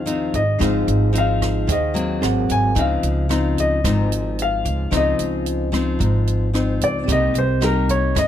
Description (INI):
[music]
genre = bossa nova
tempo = 111 BPM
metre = 4/4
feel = straight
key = unclear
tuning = A4 = 436 Hz
[part]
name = warm grand piano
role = melody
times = 0.0-8.3 s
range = Bb4 to Ab5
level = -23 LUFS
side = left 2 dB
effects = none
[part]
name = bell-like tine electric piano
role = accompaniment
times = 0.0-8.3 s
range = C4 to Gb5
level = -27 LUFS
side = right 4 dB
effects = wide subtle chorus
[part]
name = nylon-string guitar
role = accompaniment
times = 0.0-8.3 s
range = G2 to Eb4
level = -23 LUFS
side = left 4 dB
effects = none
[part]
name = upright bass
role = bass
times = 0.0-8.3 s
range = Ab1 to G2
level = -21 LUFS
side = right 1 dB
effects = none
[part]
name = compact cocktail drum kit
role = drums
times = 0.1-8.3 s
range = hi-hat, kick drum, rim click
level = -26 LUFS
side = right 1 dB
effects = none
[sound]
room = little or no reverb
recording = close, detailed microphones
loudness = -17 LUFS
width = side -10 dB against mid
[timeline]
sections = 0.0-8.3 A section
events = grand piano solo 0.0-8.3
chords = 0.0 Ab6; 2.2 Ab9; 2.8 Dbmaj9; 7.1 Cm7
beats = 0.06 | 0.60 1.14 1.68 2.22 | 2.76 3.30 3.84 4.38 | 4.92 5.46 6.00 6.54 | 7.08 7.62 8.16